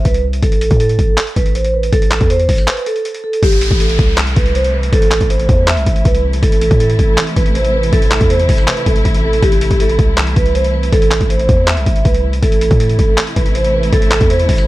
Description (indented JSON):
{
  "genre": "hip hop, trap",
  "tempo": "160 BPM",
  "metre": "4/4",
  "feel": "half-time",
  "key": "A minor",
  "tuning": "A4 = 439 Hz",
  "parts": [
    { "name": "vibraphone with medium mallets", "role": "melody", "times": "0.0-14.7 s", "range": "G4 to E5", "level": "-17 LUFS", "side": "right 2 dB", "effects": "low-pass filter, digital delay" },
    { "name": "hard-hitting 808-style bass", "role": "bass", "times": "0.0-14.7 s", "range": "A1 to A2", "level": "-16 LUFS", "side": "equal", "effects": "none" },
    { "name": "boom bap sampler-style drum kit", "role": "drums", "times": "0.1-14.7 s", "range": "handclaps, hi-hat, kick drum", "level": "-14 LUFS", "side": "equal", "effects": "none" },
    { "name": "dark symphonic string section", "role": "sustained chords", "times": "3.4-14.7 s", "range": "C3 to E4", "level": "-23 LUFS", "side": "left 1 dB", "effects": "none" },
    { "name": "downlifter", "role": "sound effects", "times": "3.4-6.4 s", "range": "none", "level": "-25 LUFS", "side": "equal", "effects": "none" }
  ],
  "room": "digital ambience",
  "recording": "dark, warm production",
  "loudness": "-11 LUFS",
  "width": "side -17 dB against mid",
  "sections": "0.0-3.4 A section; 3.4-14.7 B section",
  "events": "break 2.7-3.4",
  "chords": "0.0 N.C.; 3.4 Am"
}